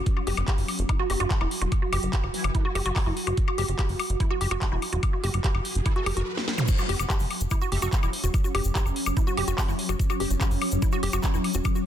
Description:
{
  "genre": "psychedelic trance",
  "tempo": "145 BPM",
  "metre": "4/4",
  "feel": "straight",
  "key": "unclear",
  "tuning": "A4 = 440 Hz",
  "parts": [
    { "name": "swarming drone", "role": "sustained chords", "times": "0.0-11.9 s", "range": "F#3 to F#4", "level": "-33 LUFS", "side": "left 1 dB", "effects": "built-in reverb, sidechain pumping" },
    { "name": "woody wave-folded pluck", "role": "riff", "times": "0.0-11.8 s", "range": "E4 to G4", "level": "-32 LUFS", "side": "moving between left 5 dB and right 4 dB", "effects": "chorus, auto-pan, sidechain pumping, digital delay" },
    { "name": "drum and bass drum kit", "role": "drums", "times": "0.1-11.7 s", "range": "crash cymbal, handclaps, hi-hat, snare drum, toms, woodblock", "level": "-31 LUFS", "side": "left 2 dB", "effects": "none" },
    { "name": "electronic kick drum", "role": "drums", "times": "0.1-11.7 s", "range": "none", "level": "-25 LUFS", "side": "equal", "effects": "none" },
    { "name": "metallic wobble bass", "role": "second line", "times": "0.3-2.6, 6.9-8.1 s", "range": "E3 to B3", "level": "-42 LUFS", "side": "right 1 dB", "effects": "wide subtle chorus, sidechain pumping, high-pass filter, ping-pong delay" },
    { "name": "plucky analog bass", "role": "bass", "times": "0.3-11.6 s", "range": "E1 to F#1", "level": "-27 LUFS", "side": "equal", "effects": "tube saturation" },
    { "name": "riser and zap", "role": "sound effects", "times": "4.9-6.7 s", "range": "none", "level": "-37 LUFS", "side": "right 1 dB", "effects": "none" },
    { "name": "egg shaker", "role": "percussion", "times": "6.7-11.8 s", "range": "none", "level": "-40 LUFS", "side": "left 6 dB", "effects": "none" }
  ],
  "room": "light reverb",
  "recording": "dense, heavily limited modern master",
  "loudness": "-23 LUFS",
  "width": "side -10 dB against mid",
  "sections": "0.0-6.7 A section; 6.7-11.9 B section",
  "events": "riser 4.9-6.7; drum fill 6.4-6.7; drop 6.7-11.9",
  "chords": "0.0 F#5",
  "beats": "| 0.06 0.48 0.89 1.30 | 1.72 2.13 2.55 2.96 | 3.37 3.79 4.20 4.62 | 5.03 5.44 5.86 6.27 | 6.68 7.10 7.51 7.93 | 8.34 8.75 9.17 9.58 | 9.99 10.41 10.82 11.24 | 11.65"
}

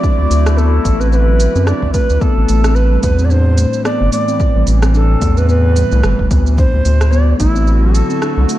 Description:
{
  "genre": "organic downtempo",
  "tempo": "110 BPM",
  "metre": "4/4",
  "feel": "swing 57% on 16ths",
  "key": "A dorian",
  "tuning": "A4 = 440 Hz",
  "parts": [
    { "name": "low Native American-style wooden flute", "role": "melody", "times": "0.0-8.5 s", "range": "E4 to D5", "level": "-19 LUFS", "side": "right 1 dB", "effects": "diffuse ambient delay, shimmer reverb" },
    { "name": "warbly tape-like pad", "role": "sustained chords", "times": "0.0-8.6 s", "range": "A2 to F#4", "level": "-22 LUFS", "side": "equal", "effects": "chorus, built-in reverb, phaser, sidechain pumping, shimmer reverb" },
    { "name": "steel tongue drum", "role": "arpeggios", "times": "0.0-8.6 s", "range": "F#3 to D4", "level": "-20 LUFS", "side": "left 1 dB", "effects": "diffuse ambient delay, shimmer reverb" },
    { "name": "electronic kick drum", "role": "drums", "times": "0.0-7.5 s", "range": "none", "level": "-15 LUFS", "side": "equal", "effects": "studio reverb" },
    { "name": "organic electronic drum kit", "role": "drums", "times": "0.0-8.6 s", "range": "hi-hat, rim click, shaker", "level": "-26 LUFS", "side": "right 1 dB", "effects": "studio reverb" },
    { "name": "round analog bass", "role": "bass", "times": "0.2-8.5 s", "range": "E1 to F#2", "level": "-12 LUFS", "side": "equal", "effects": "tube saturation, sidechain pumping" }
  ],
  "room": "light reverb",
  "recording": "none",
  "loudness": "-10 LUFS",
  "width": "side -14 dB against mid",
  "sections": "0.0-8.6 A section",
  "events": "none",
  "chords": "0.0 D69; 2.2 Am9; 6.6 D13",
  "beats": "| 0.04 0.58 1.13 1.67 | 2.22 2.76 3.31 3.85 | 4.40 4.95 5.49 6.04 | 6.58 7.13 7.67 8.22"
}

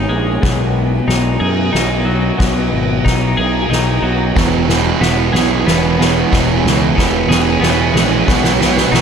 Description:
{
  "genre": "post-rock",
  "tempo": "61 BPM (dotted quarters)",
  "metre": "6/8",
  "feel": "straight",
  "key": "unclear",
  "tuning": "A4 = 440 Hz",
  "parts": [
    { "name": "granular cloud pad", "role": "sustained chords", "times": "0.0-9.0 s", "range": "B3 to A#5", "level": "-25 LUFS", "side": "equal", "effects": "built-in reverb" },
    { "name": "twelve-string electric guitar", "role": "arpeggios", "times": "0.0-9.0 s", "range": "E2 to G#4", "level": "-18 LUFS", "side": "left 4 dB", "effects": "spring reverb, digital delay" },
    { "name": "growling fingered electric bass", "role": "bass", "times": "0.0-9.0 s", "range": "E1 to F#2", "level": "-19 LUFS", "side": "equal", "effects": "overdrive" },
    { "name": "soft-mallet drum kit", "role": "drums", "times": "0.1-9.0 s", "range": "crash cymbal, kick drum, ride cymbal, snare drum", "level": "-16 LUFS", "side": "equal", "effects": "none" },
    { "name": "sludgy distorted guitar", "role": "riff", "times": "4.4-9.0 s", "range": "E2 to B3", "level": "-16 LUFS", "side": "right 8 dB", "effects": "overdrive, slapback echo" }
  ],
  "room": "moderate lush hall reverb, RT60 2.2 s",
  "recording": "big arena sound",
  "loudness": "-12 LUFS",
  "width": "side -7 dB against mid",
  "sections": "0.0-9.0 A section",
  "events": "build-up 0.0-9.0; drum fill 0.0-9.0",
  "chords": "0.4 B6; 4.4 E6; 8.3 B6",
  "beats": "| 0.43 1.42 | 2.40 3.38 | 4.37 5.35 | 6.33 7.31 | 8.29"
}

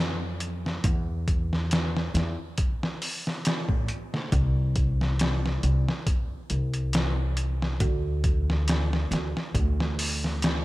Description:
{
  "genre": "trip hop",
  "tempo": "69 BPM",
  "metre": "4/4",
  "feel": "swing 54% on 16ths",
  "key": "unclear",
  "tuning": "A4 = 440 Hz",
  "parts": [
    { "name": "upright bass", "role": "bass", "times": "0.0-10.6 s", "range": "C2 to A2", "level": "-26 LUFS", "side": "equal", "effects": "none" },
    { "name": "trip hop sampler-style drum kit", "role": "drums", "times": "0.4-10.6 s", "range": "hi-hat, kick drum, snare drum", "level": "-27 LUFS", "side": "equal", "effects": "overdrive" }
  ],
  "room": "light reverb",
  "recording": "none",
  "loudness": "-24 LUFS",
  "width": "side -18 dB against mid",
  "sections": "0.0-10.6 A section",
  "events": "none",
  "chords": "none",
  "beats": "| 0.85 1.72 2.59 3.46 | 4.33 5.20 6.07 6.93 | 7.80 8.67 9.54 10.41"
}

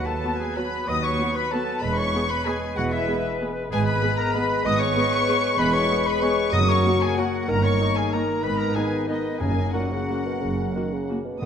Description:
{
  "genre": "classical, orchestral ballroom waltz",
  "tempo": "169-207 BPM",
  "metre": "3/4",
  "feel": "rubato",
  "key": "E major",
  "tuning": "A4 = 440 Hz",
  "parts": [
    { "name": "muted chamber violin section", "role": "melody", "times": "0.0-11.5 s", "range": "D#5 to D#6", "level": "-30 LUFS", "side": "left 4 dB", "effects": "none" },
    { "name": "bright concert flute", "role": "second line", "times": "0.0-11.1 s", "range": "D#5 to D#6", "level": "-30 LUFS", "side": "equal", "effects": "none" },
    { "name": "clear clarinet", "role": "second line", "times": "0.0-11.5 s", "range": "D#4 to D#5", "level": "-31 LUFS", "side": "left 2 dB", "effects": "none" },
    { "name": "mellow cor anglais", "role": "second line", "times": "0.0-11.5 s", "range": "A#4 to B4", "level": "-32 LUFS", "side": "equal", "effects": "none" },
    { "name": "muted studio violin section", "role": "second line", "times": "0.0-11.5 s", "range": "D#5 to D#6", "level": "-32 LUFS", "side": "left 4 dB", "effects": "none" },
    { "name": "dark bassoon", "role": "accompaniment", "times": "0.0-11.5 s", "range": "A#2 to G#3", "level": "-31 LUFS", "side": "right 2 dB", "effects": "none" },
    { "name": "muted chamber cello section", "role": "bass", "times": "0.0-11.5 s", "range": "D#2 to B2", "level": "-31 LUFS", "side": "right 3 dB", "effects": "none" },
    { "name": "muted chamber double bass section", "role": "bass", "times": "0.0-11.5 s", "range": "E1 to D#2", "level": "-29 LUFS", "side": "right 3 dB", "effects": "none" },
    { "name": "muted symphonic viola section", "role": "accompaniment", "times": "0.2-11.2 s", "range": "A#3 to G#4", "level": "-33 LUFS", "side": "right 1 dB", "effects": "none" },
    { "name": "mellow French horn section", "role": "sustained chords", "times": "0.2-11.3 s", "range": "A#3 to G#4", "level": "-29 LUFS", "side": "left 5 dB", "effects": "none" },
    { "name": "timpani", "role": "percussion", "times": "6.5-7.0, 9.4-11.5 s", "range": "F#2 to B2", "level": "-30 LUFS", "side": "left 1 dB", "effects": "none" }
  ],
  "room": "wet scoring stage reverb, RT60 1.8 s",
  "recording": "dark, warm production",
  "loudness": "-21 LUFS",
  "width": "side -8 dB against mid",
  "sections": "0.0-11.4 A section",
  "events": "none",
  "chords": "0.0 B7/D#; 1.8 E; 3.7 G#m; 5.6 C#m7/E; 6.5 F#; 7.5 D#7/G; 8.4 G#m; 9.4 F#",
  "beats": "0.23 0.57 | 0.88 1.19 1.52 | 1.83 2.14 2.47 | 2.77 3.08 3.41 | 3.72 4.03 4.35 | 4.65 4.96 5.29 | 5.59 5.90 6.23 | 6.54 6.85 7.18 | 7.49 7.80 8.13 | 8.44 8.76 9.09 | 9.41 9.74 10.09 | 10.42 10.75 11.09 | 11.42"
}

